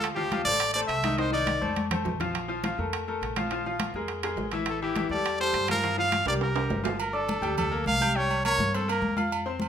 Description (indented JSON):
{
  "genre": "latin, salsa",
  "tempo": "207 BPM",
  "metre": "4/4",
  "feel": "straight",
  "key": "unclear",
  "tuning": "A4 = 439 Hz",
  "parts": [
    { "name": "bright trumpet", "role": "melody", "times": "0.0-1.9, 4.7-9.2 s", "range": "G4 to F5", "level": "-27 LUFS", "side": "right 1 dB", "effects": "none" },
    { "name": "bright grand piano", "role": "accompaniment", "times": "0.0-9.7 s", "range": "Eb3 to G6", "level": "-30 LUFS", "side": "left 3 dB", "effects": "none" },
    { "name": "upright bass", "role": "bass", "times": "0.0-9.7 s", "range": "G1 to G2", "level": "-34 LUFS", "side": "right 1 dB", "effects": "none" },
    { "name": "congas", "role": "percussion", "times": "0.0-9.7 s", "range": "none", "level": "-34 LUFS", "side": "left 1 dB", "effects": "none" },
    { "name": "timbales and agogo bells", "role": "percussion", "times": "0.0-9.7 s", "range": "none", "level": "-33 LUFS", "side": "right 7 dB", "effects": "none" }
  ],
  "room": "moderate large studio reverb, RT60 0.9 s",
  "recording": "minimal, uncompressed stereo recording",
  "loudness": "-25 LUFS",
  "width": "side -8 dB against mid",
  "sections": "0.0-7.0 A section; 7.0-9.7 B section",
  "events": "drum fill 1.6-2.3, 6.3-7.0",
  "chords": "0.0 Dm9; 1.2 Cm; 1.8 F; 2.3 Bb5; 4.7 Am7; 5.8 Gm7; 6.4 C5; 7.0 Gm9; 8.2 C5",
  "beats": "| 0.02 0.31 0.60 0.89 | 1.18 1.48 1.76 2.06 | 2.35 2.64 2.93 3.22 | 3.51 3.80 4.09 4.38 | 4.67 4.96 5.25 5.54 | 5.83 6.12 6.41 6.70 | 6.99 7.28 7.57 7.86 | 8.15 8.44 8.73 9.02 | 9.31 9.60"
}